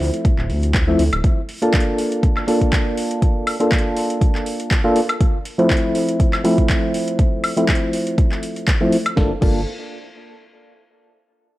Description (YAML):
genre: deep house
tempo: 121 BPM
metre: 4/4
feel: swing 54% on 16ths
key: G minor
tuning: A4 = 440 Hz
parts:
  - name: percussive organ stab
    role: stabs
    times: 0.0-9.6 s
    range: F3 to A4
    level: -19 LUFS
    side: equal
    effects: chorus, sidechain pumping, tape echo
  - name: smooth synth bass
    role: bass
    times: 0.0-1.2, 9.2-9.7 s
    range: D1 to D2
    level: -20 LUFS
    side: equal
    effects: sidechain pumping
  - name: deep house drum kit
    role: drums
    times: 0.0-9.5 s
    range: crash cymbal, handclaps, hi-hat, snare drum, woodblock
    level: -25 LUFS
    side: equal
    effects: overdrive, small room ambience
  - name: electronic kick drum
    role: drums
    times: 0.2-9.5 s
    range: none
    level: -17 LUFS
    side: equal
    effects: overdrive, small room ambience
room: moderate echo chamber reverb, RT60 1.4 s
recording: cassette tape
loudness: -16 LUFS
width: side -16 dB against mid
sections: 0.0-9.2 A section; 9.2-11.2 B section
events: filter sweep on synth stab 0.0-9.2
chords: 0.0 Dm7; 1.2 Bbmaj7; 5.2 Fmaj7; 9.2 Gm7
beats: 0.25 0.74 | 1.24 1.74 2.23 2.73 | 3.22 3.72 4.21 4.71 | 5.21 5.70 6.20 6.69 | 7.19 7.68 8.18 8.68 | 9.17